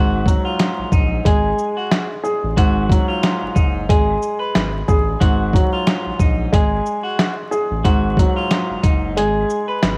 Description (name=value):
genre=hip hop, boom-bap hip-hop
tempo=91 BPM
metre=4/4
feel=swing 56% on 16ths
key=unclear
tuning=A4 = 441 Hz
part: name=clean electric guitar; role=melody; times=0.0-10.0 s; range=D#4 to B4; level=-27 LUFS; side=equal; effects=high-pass filter, low-pass filter, cassette tape, analog delay
part: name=dark baby grand piano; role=accompaniment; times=0.0-10.0 s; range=G#2 to G#4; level=-24 LUFS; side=equal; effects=cassette tape, high-pass filter, low-pass filter
part: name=saturated sub bass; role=bass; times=0.0-10.0 s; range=F#1 to A#1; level=-26 LUFS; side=equal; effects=none
part: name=dusty soul sampler-style drum kit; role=drums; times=0.3-10.0 s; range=hi-hat, kick drum, shaker, snare drum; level=-19 LUFS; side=equal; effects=cassette tape
room=digital ambience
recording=home recording on cassette, vinyl crackle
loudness=-18 LUFS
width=mono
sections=0.0-10.0 A section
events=kick muted 9.2-10.0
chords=0.0 F#maj13/G#; 1.3 F#sus2/G#; 2.6 D#madd11; 3.9 G#m; 5.2 F#maj13/G#; 6.5 F#sus2/G#; 7.8 D#madd11; 9.2 G#m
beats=0.59 1.25 1.91 | 2.57 3.23 3.89 4.55 | 5.21 5.87 6.53 7.19 | 7.85 8.51 9.16 9.82